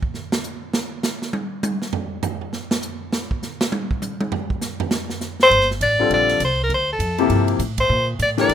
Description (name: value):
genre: modal jazz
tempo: 201 BPM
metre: 4/4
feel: swing 62% on 8ths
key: G dorian from 5.5 s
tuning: A4 = 440 Hz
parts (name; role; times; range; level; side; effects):
- swinging big-band drum kit; drums; 0.0-8.5 s; hi-hat, kick drum, ride cymbal, snare drum, toms; -25 LUFS; right 2 dB; none
- bright soprano saxophone; melody; 5.4-8.5 s; A4 to D5; -16 LUFS; equal; none
- upright bass; bass; 5.5-8.5 s; G1 to Bb2; -23 LUFS; equal; none
- clear upright piano; accompaniment; 6.0-8.5 s; C3 to Bb4; -19 LUFS; left 6 dB; none
room: light reverb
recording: minimal, uncompressed stereo recording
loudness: -18 LUFS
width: side -9 dB against mid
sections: 0.0-5.5 A section; 5.5-8.5 B section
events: drum solo 0.0-5.5; band accent 7.8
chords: 0.0 N.C.; 5.5 Gm11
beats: 0.14 0.44 | 0.74 1.04 1.33 1.63 | 1.93 2.23 2.53 2.83 | 3.12 3.42 3.72 4.02 | 4.32 4.61 4.91 5.21 | 5.51 5.81 6.11 6.41 | 6.71 7.00 7.30 7.60 | 7.90 8.20 8.50